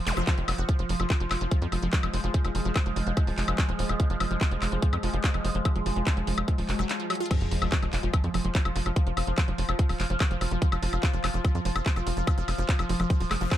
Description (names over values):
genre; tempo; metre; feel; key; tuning
psychedelic trance; 145 BPM; 4/4; straight; F minor; A4 = 440 Hz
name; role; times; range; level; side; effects
overtone-sweeping drone; sustained chords; 0.0-13.6 s; F3 to F4; -34 LUFS; equal; chorus, built-in reverb, phaser, sidechain pumping
tight sequencer bass; bass; 0.0-13.5 s; Eb1 to F2; -29 LUFS; equal; none
wide unison pluck; riff; 0.1-13.6 s; Eb3 to Gb4; -34 LUFS; right 1 dB; phaser, auto-pan, sidechain pumping, dub echo
garage drum kit; drums; 0.1-13.6 s; crash cymbal, handclaps, hi-hat, woodblock; -32 LUFS; left 2 dB; none
zap and sub drop; sound effects; 0.1-0.2, 7.4-9.0 s; none; -36 LUFS; equal; none
electronic kick drum; drums; 0.3-13.6 s; none; -25 LUFS; equal; none
room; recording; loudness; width
little or no reverb; dark, warm production; -24 LUFS; side -12 dB against mid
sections
0.0-7.3 A section; 7.3-13.6 B section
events
drum fill 7.1; drop 7.3-13.6; impact 7.3-9.0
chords
0.0 F5; 7.3 N.C.